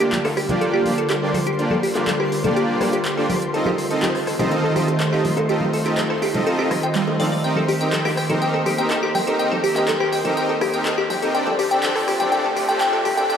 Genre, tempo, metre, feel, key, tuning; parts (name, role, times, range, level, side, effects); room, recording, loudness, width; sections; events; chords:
progressive house; 123 BPM; 4/4; straight; G minor; A4 = 440 Hz
evolving wavetable pad; sustained chords; 0.0-13.4 s; D3 to Eb5; -25 LUFS; equal; chorus, built-in reverb
glassy wavetable pluck; arpeggios; 0.0-13.4 s; G3 to G5; -22 LUFS; equal; chorus, phaser, analog delay
soft supersaw; stabs; 0.0-13.4 s; Bb3 to F5; -23 LUFS; right 1 dB; analog delay
deep house drum kit; drums; 0.0-13.4 s; handclaps, hi-hat, rim click; -29 LUFS; left 1 dB; high-pass filter on hats, high-pass filter on snare
twinkling granular texture; texture; 0.9-13.4 s; C5 to C6; -33 LUFS; left 1 dB; built-in reverb
congas and bongos; percussion; 0.1-13.3 s; -29 LUFS; equal
riser; sound effects; 11.1-13.4 s; -36 LUFS; equal
wet lush hall reverb, RT60 1.9 s; dreamy mix soaked in reverb, high-pass filter; -18 LUFS; side -8 dB against mid
0.0-13.4 A section
build-up 0.0-13.4
0.0 Gm7; 3.5 F7; 7.4 Eb6; 11.3 Dm7